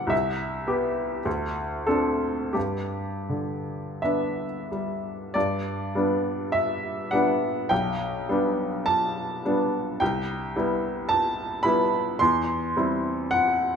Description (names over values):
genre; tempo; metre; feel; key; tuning
classical, romantic nocturne for solo piano; 39-56 BPM; 4/4; rubato; G major; A4 = 439 Hz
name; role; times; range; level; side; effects
clear upright piano; solo; 0.0-13.8 s; B1 to C6; -23 LUFS; equal; none
room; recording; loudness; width
moderate recital hall reverb, RT60 1.6 s; recorded in a church or concert hall; -23 LUFS; side -6 dB against mid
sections
0.0-5.3 A section; 5.3-13.8 B section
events
none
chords
0.1 Cmaj7; 1.3 D5; 2.6 G; 7.7 G/B; 10.0 Cmaj7; 12.2 C/E